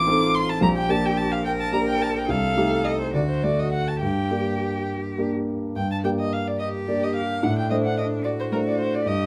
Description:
quick classical-period movement for piano trio; 68-75 BPM (dotted quarters); 6/8; rubato; G minor; A4 = 439 Hz
dark violin; melody; 0.0-9.3 s; Bb4 to D6; -28 LUFS; equal
clear cello; second line; 0.0-9.3 s; D4 to Bb4; -34 LUFS; equal
warm grand piano; accompaniment; 0.0-9.3 s; A1 to C5; -26 LUFS; equal
light reverb; close, detailed microphones; -24 LUFS; mono
0.0-5.8 A section; 5.8-9.3 A section
0.0 Adim; 0.6 Gm/Bb; 2.3 Am7b5/C; 3.1 D; 4.0 Gm; 7.4 D7/A

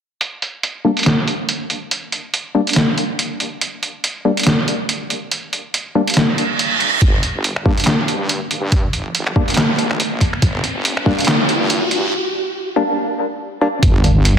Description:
deep dubstep; 141 BPM; 4/4; swing 57% on 16ths, half-time; G minor; A4 = 440 Hz
trip hop sampler-style drum kit; drums; 0.2-14.3 s; finger snaps, handclaps, hi-hat, snare drum; -18 LUFS; right 1 dB; overdrive, low-pass filter on hats, low-pass filter on snare
percussive organ stab; stabs; 0.8-13.7 s; G3 to D4; -21 LUFS; left 2 dB; chorus, dub echo
reverse cymbal, riser and sub drop; sound effects; 6.3-14.4 s; -22 LUFS; right 1 dB
wobble bass; bass; 7.0-14.4 s; G1 to G2; -20 LUFS; equal; chorus, tube saturation, high-pass filter
electronic kick drum; drums; 7.0-11.2, 13.8-13.9 s; -16 LUFS; equal; overdrive
wet lush hall reverb, RT60 1.8 s; dense, heavily limited modern master, high-pass filter; -15 LUFS; side -8 dB against mid
0.2-7.0 A section; 7.0-13.8 B section
reverse cymbal 6.3-7.0; build-up 7.0-13.8; riser 7.0-12.1; filter sweep on synth stab 7.0-13.8; filter sweep 7.0-13.8; break 12.1-13.8; impact 13.8-14.4
0.2 Gm; 13.8 N.C.

